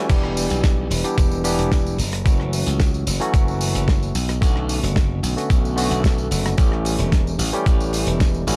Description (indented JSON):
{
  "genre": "nu-disco, nu disco",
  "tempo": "111 BPM",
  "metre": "4/4",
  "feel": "straight",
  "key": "E dorian",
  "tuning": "A4 = 440 Hz",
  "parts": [
    { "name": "barky tine electric piano", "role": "accompaniment", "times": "0.0-8.6 s", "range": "D3 to G4", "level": "-27 LUFS", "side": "equal", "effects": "overdrive, sidechain pumping, analog delay" },
    { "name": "glassy slap bass", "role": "bass", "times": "0.1-8.6 s", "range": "E1 to C#2", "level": "-25 LUFS", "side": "equal", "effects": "tube saturation" },
    { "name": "damped 70s drum kit", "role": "drums", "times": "0.1-8.6 s", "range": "crash cymbal, hi-hat, rim click, snare drum, tambourine", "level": "-30 LUFS", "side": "equal", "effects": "studio reverb" },
    { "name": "electronic kick drum", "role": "drums", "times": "0.1-8.3 s", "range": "none", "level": "-20 LUFS", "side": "equal", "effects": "studio reverb" }
  ],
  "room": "studio ambience",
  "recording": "none",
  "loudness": "-20 LUFS",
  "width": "mono",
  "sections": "0.1-8.6 A section",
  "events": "drop 0.1-8.6",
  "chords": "0.1 Em7; 2.0 F#m7; 4.2 Bm9; 6.6 A7"
}